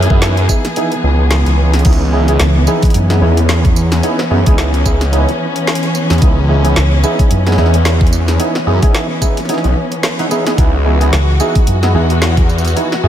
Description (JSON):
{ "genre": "glitch hop", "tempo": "110 BPM", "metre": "4/4", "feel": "swing 57% on 16ths", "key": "C# minor", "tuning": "A4 = 441 Hz", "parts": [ { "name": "dark symphonic string section", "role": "sustained chords", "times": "0.0-13.1 s", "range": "E3 to G#4", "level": "-18 LUFS", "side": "left 1 dB", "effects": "sidechain pumping" }, { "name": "clav", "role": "stabs", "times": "0.0-13.1 s", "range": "B3 to B4", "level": "-18 LUFS", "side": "right 2 dB", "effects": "analog chorus, sidechain pumping, analog delay" }, { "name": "phased detuned saw bass", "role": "bass", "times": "0.0-13.1 s", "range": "B1 to F#2", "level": "-12 LUFS", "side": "equal", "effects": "phaser, tube saturation" }, { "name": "drum and bass drum kit", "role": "drums", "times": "0.0-13.0 s", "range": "crash cymbal, hi-hat, snare drum, tambourine", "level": "-20 LUFS", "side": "equal", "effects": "overdrive" }, { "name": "electronic kick drum", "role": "drums", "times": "0.1-12.5 s", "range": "none", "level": "-12 LUFS", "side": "equal", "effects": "overdrive" }, { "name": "fingered electric bass", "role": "bass", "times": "2.4-3.2, 6.8-7.6, 11.1-11.9 s", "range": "C#2 to F#2", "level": "-12 LUFS", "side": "equal", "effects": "none" } ], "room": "light reverb, digital ambience", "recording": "none", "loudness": "-10 LUFS", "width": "side -10 dB against mid", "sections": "0.0-13.1 A section", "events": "none", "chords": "0.0 C#m9" }